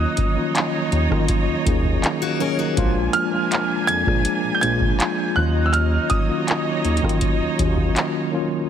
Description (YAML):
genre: contemporary R&B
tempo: 81 BPM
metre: 4/4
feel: straight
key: Eb minor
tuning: A4 = 440 Hz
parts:
  - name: clear grand piano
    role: melody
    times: 0.0-8.3 s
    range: Eb6 to Ab6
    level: -24 LUFS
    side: right 2 dB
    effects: tape echo
  - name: mellow tine electric piano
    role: accompaniment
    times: 0.0-8.7 s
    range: Eb3 to Ab4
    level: -23 LUFS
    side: left 1 dB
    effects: medium stereo tremolo
  - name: warm studio string section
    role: sustained chords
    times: 0.0-8.7 s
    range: D4 to Ab5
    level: -28 LUFS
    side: right 3 dB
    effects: none
  - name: smooth synth bass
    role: bass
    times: 0.0-7.9 s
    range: Bb1 to Eb3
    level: -22 LUFS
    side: equal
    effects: none
  - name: booming analog drum machine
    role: drums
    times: 0.2-8.1 s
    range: handclaps, hi-hat, kick drum, rim click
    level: -22 LUFS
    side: equal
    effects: none
  - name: picked steel-string acoustic guitar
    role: arpeggios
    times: 2.2-2.9 s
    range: Bb3 to Bb4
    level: -26 LUFS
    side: left 8 dB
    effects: tape echo
room: light reverb, small room ambience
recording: heavily compressed radio sound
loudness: -18 LUFS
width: side -9 dB against mid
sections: 0.0-8.7 A section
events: none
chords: 0.0 Ebm7; 2.8 Bb7; 5.4 Ebm7